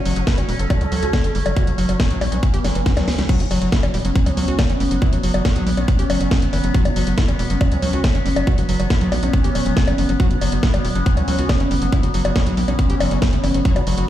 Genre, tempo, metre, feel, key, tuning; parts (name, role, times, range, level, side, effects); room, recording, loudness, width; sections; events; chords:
psychedelic trance; 139 BPM; 4/4; straight; F# phrygian; A4 = 435 Hz
overtone-sweeping drone; sustained chords; 0.0-14.1 s; B3 to C#4; -27 LUFS; right 2 dB; chorus, built-in reverb, sidechain pumping
tight sequencer bass; bass; 0.0-14.0 s; E1 to C#2; -21 LUFS; equal
wide unison lead; melody; 0.1-14.0 s; F#3 to C#5; -25 LUFS; equal; phaser, sidechain pumping, dub echo
overdriven acid bass; riff; 0.1-14.1 s; E3 to G4; -26 LUFS; moving between left 4 dB and right 3 dB; auto-pan, sidechain pumping, dub echo
techno drum kit; drums; 0.1-14.1 s; bongos, crash cymbal, hi-hat, snare drum; -25 LUFS; left 2 dB
electronic kick drum; drums; 0.3-13.7 s; -17 LUFS; equal
little or no reverb; played on a big sound system in a bare room, large studio reverb; -16 LUFS; side -12 dB against mid
0.0-3.3 A section; 3.3-14.1 B section
drum fill 2.9-3.3; drop 3.3-14.1
0.0 F#5